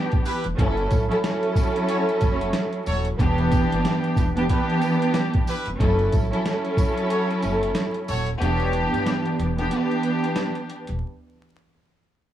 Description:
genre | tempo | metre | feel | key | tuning
hip hop, boom-bap hip-hop | 92 BPM | 4/4 | swing 59% on 16ths | E dorian | A4 = 442 Hz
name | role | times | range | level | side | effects
breathy tenor saxophone | melody | 0.0-0.5 s | G4 | -40 LUFS | right 4 dB | none
warm studio string section | accompaniment | 0.0-10.8 s | E3 to A4 | -23 LUFS | right 1 dB | cassette tape
boom bap sampler-style drum kit | drums | 0.1-11.0 s | hi-hat, kick drum, snare drum | -24 LUFS | equal | none
bright trumpet section | stabs | 0.3-8.3 s | E4 to C#5 | -32 LUFS | equal | analog delay
tambourine | percussion | 0.3-8.3 s | none | -46 LUFS | right 3 dB | none
upright bass | bass | 0.5-11.0 s | D#1 to A1 | -26 LUFS | equal | tube saturation
room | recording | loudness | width
little or no reverb | dry, gritty hardware recording, vinyl crackle | -20 LUFS | side -11 dB against mid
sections
0.0-8.4 A section; 8.4-11.0 B section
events
break 7.1-8.4; kick muted 8.4-11.0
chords
0.0 Em7; 0.6 F#m7; 3.2 Em7; 5.8 F#m7; 8.4 Em7

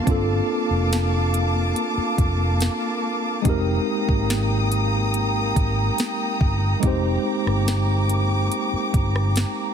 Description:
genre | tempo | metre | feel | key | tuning
contemporary R&B | 71 BPM | 4/4 | straight | unclear | A4 = 439 Hz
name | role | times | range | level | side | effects
mellow tine electric piano | accompaniment | 0.0-9.7 s | Ab3 to C5 | -25 LUFS | equal | fast stereo tremolo
muted studio string section | sustained chords | 0.0-9.7 s | Bb3 to Eb6 | -26 LUFS | equal | none
vintage muted fingered electric bass | bass | 0.1-9.4 s | F1 to Ab1 | -22 LUFS | equal | none
smooth R&B drum kit | drums | 0.1-9.6 s | hi-hat, kick drum, rim click, snare drum | -24 LUFS | equal | none
room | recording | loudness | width
little or no reverb | heavily compressed radio sound, multiband compression | -19 LUFS | side -8 dB against mid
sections
0.0-9.7 A section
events
none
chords
0.0 Gm11 (rootless); 3.4 Fm11 (rootless)

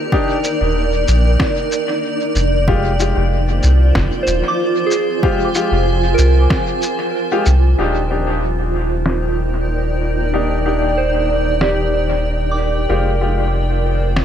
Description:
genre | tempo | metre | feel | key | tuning
ambient dub | 94 BPM | 4/4 | swing 54% on 16ths | unclear | A4 = 440 Hz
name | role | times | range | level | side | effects
granular cloud pad | sustained chords | 0.0-14.2 s | Eb4 to Ab5 | -19 LUFS | right 2 dB | built-in reverb, vintage 12-bit sampler grit
soft synth bell | arpeggios | 0.0-14.2 s | G4 to D6 | -25 LUFS | right 2 dB | chorus, low-pass filter, dub echo
clear upright piano | stabs | 0.1-13.4 s | Ab3 to G4 | -23 LUFS | left 3 dB | dub echo
electronic kick drum | drums | 0.1-6.6 s | none | -19 LUFS | equal | overdrive
electronic shaker and snare drum | drums | 0.4-14.2 s | none | -24 LUFS | equal | low-pass filter on perc, low-pass filter on snare, dub echo
soft dub sub bass | bass | 0.6-14.2 s | Eb1 to C2 | -16 LUFS | equal | tube saturation
room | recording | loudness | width
light reverb | none | -14 LUFS | side -9 dB against mid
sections
0.0-7.8 A section; 7.8-14.2 B section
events
filter sweep on drum 7.8-14.2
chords
0.0 Ebmaj7; 2.7 Fmadd9; 7.8 Ebmaj7; 12.9 Fmadd9

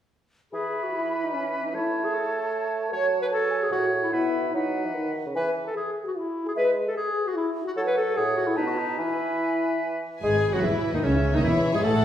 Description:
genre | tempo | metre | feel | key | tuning
quick classical-period movement for symphony orchestra | 149 BPM | 3/4 | straight | E major | A4 = 441 Hz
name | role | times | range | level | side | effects
bright clarinet | second line | 0.5-12.0 s | C#4 to C#5 | -29 LUFS | left 1 dB | none
clear oboe | second line | 0.5-12.0 s | C#4 to C#5 | -32 LUFS | equal | none
mellow silver concert flute | second line | 0.5-12.0 s | C#4 to B5 | -32 LUFS | equal | none
mellow bassoon | accompaniment | 0.5-12.0 s | A2 to A3 | -30 LUFS | right 3 dB | none
mellow French horn section | sustained chords | 0.5-12.0 s | C#3 to C#5 | -30 LUFS | left 2 dB | none
dark chamber violin section | melody | 10.2-12.0 s | B4 to F#5 | -34 LUFS | left 2 dB | none
warm chamber violin section | second line | 10.2-12.0 s | C#5 to A5 | -34 LUFS | left 4 dB | none
warm studio viola section | accompaniment | 10.2-12.0 s | C#4 to A4 | -29 LUFS | left 1 dB | none
rich chamber cello section | bass | 10.2-12.0 s | C#2 to A2 | -29 LUFS | right 2 dB | none
warm chamber double bass section | bass | 10.2-12.0 s | E1 to C#2 | -28 LUFS | right 2 dB | none
room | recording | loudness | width
wet recital hall reverb, RT60 1.4 s | heard from further back in the room | -23 LUFS | side -10 dB against mid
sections
0.5-10.2 A section; 10.2-12.0 B section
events
none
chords
0.5 E5; 1.7 A; 2.9 F#m; 3.7 F#m/A; 4.1 B; 5.4 E; 6.6 E/G#; 7.8 F#m; 8.2 F#m/A; 8.6 B7; 9.0 E; 11.4 A/E

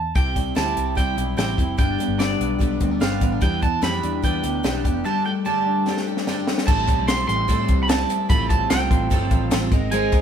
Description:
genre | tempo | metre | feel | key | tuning
jangly indie pop | 147 BPM | 4/4 | straight | unclear | A4 = 440 Hz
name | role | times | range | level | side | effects
electric guitar at the edge of break-up | melody | 0.0-10.2 s | D5 to C6 | -25 LUFS | right 4 dB | none
vintage muted picked electric bass | bass | 0.0-10.2 s | F1 to A2 | -26 LUFS | left 1 dB | none
picked twelve-string acoustic guitar | accompaniment | 0.1-10.2 s | G2 to Bb4 | -27 LUFS | right 6 dB | none
electric guitar through a small old amp | arpeggios | 0.2-10.2 s | G2 to C5 | -26 LUFS | left 4 dB | none
compact cocktail drum kit | drums | 0.2-10.2 s | crash cymbal, hi-hat, kick drum, snare drum | -22 LUFS | equal | none
group handclap | percussion | 6.9-10.2 s | none | -37 LUFS | left 4 dB | none
vibraphone with medium hard mallets | second line | 9.9-10.2 s | C5 | -25 LUFS | left 4 dB | none
room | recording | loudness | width
moderate stone room reverb, RT60 1.0 s | band playing live in one room | -18 LUFS | side -8 dB against mid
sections
0.0-6.7 A section; 6.7-10.2 B section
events
drum fill 5.9-6.7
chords
0.2 C; 1.8 G; 3.4 Em7; 5.0 Gsus2; 6.7 Am7; 8.3 Fadd9/A

